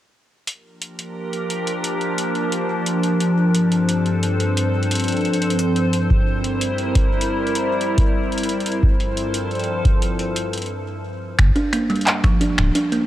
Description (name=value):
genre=IDM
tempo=88 BPM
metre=4/4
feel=straight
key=G dorian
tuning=A4 = 439 Hz
part: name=glassy FM pad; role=sustained chords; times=1.1-10.7 s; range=G2 to C5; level=-20 LUFS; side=equal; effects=ensemble chorus, built-in reverb
part: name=booming analog drum machine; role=drums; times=0.5-13.1 s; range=finger snaps, handclaps, hi-hat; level=-25 LUFS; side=equal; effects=none
part: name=electronic kick drum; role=drums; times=6.1-12.4 s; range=none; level=-18 LUFS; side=equal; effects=none
part: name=round analog bass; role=bass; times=11.4-12.7 s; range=D1 to G1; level=-16 LUFS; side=equal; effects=none
part: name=kalimba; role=arpeggios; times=11.6-13.0 s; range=F3 to D4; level=-19 LUFS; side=right 2 dB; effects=tape echo
room=light reverb, digital ambience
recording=worn, warbling old tape, cassette tape, warbly pitch drift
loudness=-17 LUFS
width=side -13 dB against mid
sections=0.5-11.4 A section; 11.4-13.1 B section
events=stop 10.7-11.4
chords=0.5 Gm7; 3.2 Dm7/G; 5.9 C7/G; 8.7 Fmaj7/G; 11.4 Gm